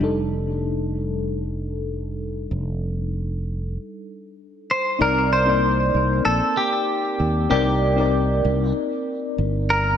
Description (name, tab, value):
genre	sunset chillout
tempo	96 BPM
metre	4/4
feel	straight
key	C dorian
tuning	A4 = 440 Hz
part	mellow FM electric piano	accompaniment	0.0-10.0 s	G3 to D5	-24 LUFS	left 2 dB	chorus, auto-pan, ping-pong delay
part	fretless electric bass	bass	0.0-10.0 s	F1 to Eb2	-24 LUFS	right 1 dB	none
part	clean electric guitar	melody	4.7-10.0 s	G4 to C5	-21 LUFS	equal	ping-pong delay
room	light reverb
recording	none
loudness	-20 LUFS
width	side -9 dB against mid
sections	0.0-5.0 A section; 5.0-10.0 B section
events	none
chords	0.0 F13; 5.0 Cm9